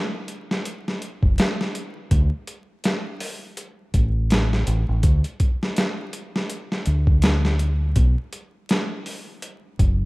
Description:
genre	trip hop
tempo	82 BPM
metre	4/4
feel	swing 57% on 16ths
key	unclear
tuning	A4 = 440 Hz
part	boom bap sampler-style drum kit	drums	0.3-10.0 s	hi-hat, kick drum, snare drum	-22 LUFS	equal	none
part	deep dub fingered electric bass	bass	1.2-10.1 s	F#1 to D2	-19 LUFS	equal	none
room	light reverb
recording	rough home demo mix, vinyl crackle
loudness	-20 LUFS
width	side -23 dB against mid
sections	0.0-10.1 A section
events	none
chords	none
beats	0.65 1.38 | 2.11 2.84 3.57 4.30 | 5.04 5.77 6.50 7.23 | 7.96 8.70 9.43

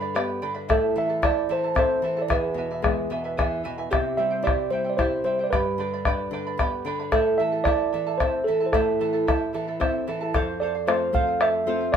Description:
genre	andean folk, Andean ensemble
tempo	75 BPM (dotted quarters)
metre	6/8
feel	straight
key	A minor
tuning	A4 = 440 Hz
part	mellow tine electric piano	melody	0.0-12.0 s	G4 to F5	-24 LUFS	right 2 dB	none
part	charango	accompaniment	0.0-12.0 s	E4 to B5	-29 LUFS	right 4 dB	none
part	nylon-string guitar	accompaniment	0.0-12.0 s	E2 to F4	-30 LUFS	left 3 dB	none
part	bombo	percussion	0.2-12.0 s	none	-25 LUFS	left 3 dB	none
room	moderate studio reverb, RT60 0.6 s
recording	minimal, uncompressed stereo recording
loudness	-22 LUFS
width	side -8 dB against mid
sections	0.0-10.3 A section; 10.3-12.0 B section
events	none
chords	0.0 G; 0.7 Am; 2.3 E; 3.9 C; 5.5 G; 7.1 Am; 10.3 F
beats	| 0.69 1.50 | 2.30 3.11 | 3.92 4.72 | 5.53 6.33 | 7.13 7.94 | 8.74 9.54 | 10.34 11.14 | 11.94

